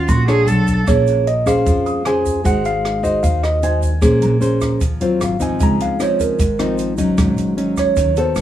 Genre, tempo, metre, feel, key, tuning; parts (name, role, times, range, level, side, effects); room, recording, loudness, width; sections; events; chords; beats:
bossa nova; 152 BPM; 4/4; straight; A4 = 440 Hz
mellow tine electric piano; melody; 0.0-8.4 s; Bb4 to Bb5; -20 LUFS; right 2 dB
rich cello; second line; 0.0-0.8 s; Gb4 to A4; -20 LUFS; right 1 dB
nylon-string guitar; accompaniment; 0.0-8.4 s; Ab2 to Db5; -18 LUFS; left 1 dB
upright bass; bass; 0.0-8.4 s; G1 to F2; -20 LUFS; right 1 dB
warm baby grand piano; accompaniment; 0.1-7.2 s; Ab5 to Eb6; -32 LUFS; right 2 dB
compact cocktail drum kit; drums; 0.1-8.4 s; hi-hat, kick drum, rim click; -21 LUFS; equal
egg shaker; percussion; 0.1-8.4 s; -38 LUFS; right 7 dB
light reverb; -14 LUFS; side -11 dB against mid
0.0-4.0 A section; 4.0-8.4 B section
tine electric piano solo 4.0-8.4
0.5 Bm9; 0.9 Bbm9; 2.5 Ab7; 4.0 Bbm9; 5.2 Ab6; 5.6 Dbmaj9; 7.2 Ab7sus4
0.09 0.48 | 0.88 1.27 1.66 2.06 | 2.45 2.84 3.24 3.63 | 4.03 4.42 4.81 5.21 | 5.60 6.00 6.39 6.79 | 7.18 7.57 7.97 8.36